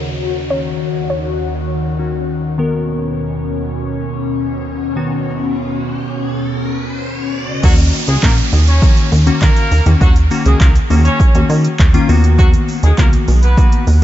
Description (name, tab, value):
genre	dance-pop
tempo	101 BPM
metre	4/4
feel	straight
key	Eb minor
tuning	A4 = 437 Hz
part	soft round pluck	melody	0.0-2.5 s	Bb4 to Db5	-26 LUFS	equal	chorus, low-pass filter, analog delay
part	glassy digital keys	accompaniment	0.0-13.8 s	Eb3 to A#4	-20 LUFS	left 3 dB	chorus, sidechain pumping, low-pass filter
part	airy breathy pad	sustained chords	0.0-7.6 s	Eb2 to Gb4	-20 LUFS	left 2 dB	chorus, phaser, sidechain pumping, low-pass filter
part	downlifter and riser	sound effects	0.0-12.4 s	none	-28 LUFS	right 1 dB	none
part	warm horn section	melody	7.6-13.8 s	Gb3 to Db5	-22 LUFS	equal	sidechain pumping, analog delay
part	plucky analog bass	bass	7.6-14.0 s	Bb1 to Eb3	-11 LUFS	equal	sidechain pumping
part	deep house drum kit	drums	7.6-14.0 s	crash cymbal, handclaps, hi-hat, kick drum, shaker	-13 LUFS	equal	none
part	egg shaker	percussion	7.6-14.0 s	none	-39 LUFS	right 9 dB	none
room	light reverb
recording	nothing above 7.7 kHz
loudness	-12 LUFS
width	side -13 dB against mid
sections	0.0-7.6 A section; 7.6-14.0 B section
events	filter sweep 0.0-7.6; riser 4.6-7.6; drop 7.6-14.0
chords	0.0 Ebm7; 2.6 Bmaj7/D#; 7.3 Ebm7; 12.1 Bmaj7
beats	| 0.51 1.10 1.70 2.29 | 2.88 3.48 4.07 4.67 | 5.26 5.85 6.45 7.04 | 7.63 8.23 8.82 9.42 | 10.01 10.61 11.20 11.79 | 12.39 12.98 13.58